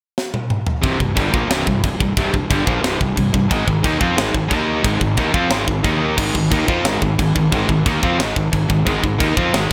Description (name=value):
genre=heavy metal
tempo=179 BPM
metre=4/4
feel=straight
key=C minor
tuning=A4 = 440 Hz
part: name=tight metal drum kit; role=drums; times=0.2-9.7 s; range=china cymbal, crash cymbal, kick drum, snare drum, toms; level=-22 LUFS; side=equal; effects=gated reverb
part: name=distorted electric guitar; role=riff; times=0.8-9.7 s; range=C2 to F4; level=-20 LUFS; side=equal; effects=distortion
part: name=fuzz fingered electric bass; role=bass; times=0.8-9.7 s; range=C1 to F2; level=-25 LUFS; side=equal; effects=overdrive
room=moderate lush hall reverb, RT60 1.6 s, small room ambience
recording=bright 1980s-style digital production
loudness=-18 LUFS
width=mono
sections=0.8-9.7 A section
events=drum fill 0.2-0.8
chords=0.0 N.C.; 0.8 C5; 3.5 Ab5; 4.5 Eb5; 4.8 Ab5; 5.8 Eb5; 6.2 Ab5